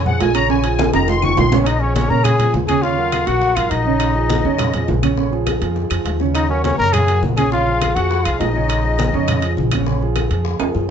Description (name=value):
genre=Afro-Cuban jazz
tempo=205 BPM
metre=4/4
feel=straight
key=Bb minor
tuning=A4 = 440 Hz
part: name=musette accordion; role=second line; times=0.0-9.5 s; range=Db5 to Db6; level=-23 LUFS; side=left 5 dB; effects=none
part: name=upright bass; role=bass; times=0.0-10.9 s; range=F1 to Bb2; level=-20 LUFS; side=left 1 dB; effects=none
part: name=warm grand piano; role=accompaniment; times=0.1-10.8 s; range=Db3 to Db5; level=-22 LUFS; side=right 7 dB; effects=none
part: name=bongos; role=percussion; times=0.1-10.9 s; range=none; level=-29 LUFS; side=left 7 dB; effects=none
part: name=congas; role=percussion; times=0.1-10.9 s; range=none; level=-24 LUFS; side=left 1 dB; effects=none
part: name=timbales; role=percussion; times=0.2-10.7 s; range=none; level=-24 LUFS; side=right 6 dB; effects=none
part: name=claves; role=percussion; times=0.3-10.7 s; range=none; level=-32 LUFS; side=left 8 dB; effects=none
part: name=breathy trumpet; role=melody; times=1.6-9.5 s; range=Db4 to Bb4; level=-20 LUFS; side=left 2 dB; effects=none
room=light reverb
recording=nothing above 7.9 kHz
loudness=-15 LUFS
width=side -8 dB against mid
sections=0.0-1.7 A section; 1.7-10.9 B section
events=accordion solo 0.0-1.7; drum fill 0.8-1.7, 5.8-6.3, 10.6-10.9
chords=0.0 Bbm7; 1.1 Dbmaj13/F; 1.7 Bbm7; 2.8 Ebm7; 4.0 Bbm7; 6.3 Ebm7; 7.5 Bbm7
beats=0.20 | 0.49 0.79 1.08 1.37 | 1.67 1.96 2.25 2.54 | 2.84 3.13 3.42 3.71 | 4.01 4.30 4.59 4.88 | 5.18 5.47 5.76 6.06 | 6.35 6.64 6.93 7.23 | 7.52 7.82 8.11 8.40 | 8.70 8.99 9.28 9.58 | 9.87 10.16 10.46 10.75